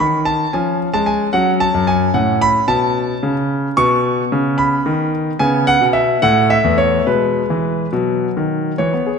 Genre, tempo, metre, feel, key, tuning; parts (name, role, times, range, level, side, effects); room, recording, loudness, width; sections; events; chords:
classical-period piano sonatina; 74 BPM (dotted quarters); 6/8; straight; A4 = 440 Hz
clear grand piano; solo; 0.0-9.2 s; E2 to C#6; -14 LUFS; equal
wet concert hall reverb, RT60 2.2 s; -14 LUFS; side -6 dB against mid
0.0-8.8 A section
0.0 N.C.; 0.5 C#/E#; 1.3 F#5; 2.2 A69; 3.8 B; 5.4 E69; 6.2 A5; 7.1 E/B; 7.9 B